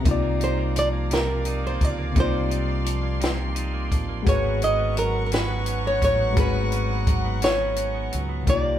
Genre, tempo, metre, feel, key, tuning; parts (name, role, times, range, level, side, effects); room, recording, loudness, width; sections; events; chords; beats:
slow six-eight R&B; 57 BPM (dotted quarters); 6/8; straight; A4 = 441 Hz
clean electric guitar; second line; 0.0-8.8 s; Ab2 to Eb4; -32 LUFS; right 7 dB
bright reed electric piano; accompaniment; 0.0-8.8 s; C3 to D5; -29 LUFS; left 5 dB; overdrive
warm studio string section; sustained chords; 0.0-8.8 s; Cb5 to Db6; -33 LUFS; left 2 dB
deep dub fingered electric bass; bass; 0.0-8.8 s; Ab1 to Db2; -27 LUFS; equal
compact cocktail drum kit; drums; 0.1-8.6 s; hi-hat, kick drum, snare drum; -24 LUFS; equal
flamenco guitar; melody; 0.4-8.8 s; Bb4 to Eb5; -25 LUFS; right 1 dB
moderate large studio reverb, RT60 0.9 s; band playing live in one room; -21 LUFS; side -11 dB against mid
0.0-8.5 A section
break 7.4-8.5
0.1 Cm11; 4.3 Abm11
| 0.05 1.10 | 2.16 3.21 | 4.26 5.32 | 6.37 7.42 | 8.47